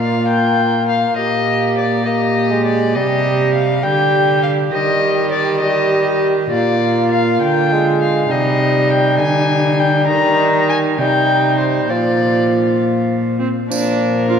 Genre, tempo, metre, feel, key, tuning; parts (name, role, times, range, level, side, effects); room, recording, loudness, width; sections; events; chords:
classical, renaissance-style consort dance; 67 BPM (dotted quarters); 6/8; straight; Bb mixolydian; A4 = 440 Hz
dark violin; melody; 0.0-14.4 s; Bb4 to Bb5; -19 LUFS; left 4 dB
warm viola; second line; 0.0-14.4 s; C4 to G4; -19 LUFS; right 6 dB
warm bassoon; accompaniment; 0.0-14.4 s; F3 to Bb3; -19 LUFS; left 2 dB
rich cello; bass; 0.0-14.4 s; Bb2 to Eb3; -19 LUFS; equal
tambourine; percussion; 13.7-14.0 s; -28 LUFS; right 7 dB
wet church reverb, RT60 3.1 s; dark, warm production; -13 LUFS; side -7 dB against mid
0.0-13.7 A section
0.0 Bb5; 1.2 Eb/Bb; 3.0 Cm; 4.7 Eb; 6.5 Bb; 8.3 Cm; 10.1 Eb; 11.9 Bb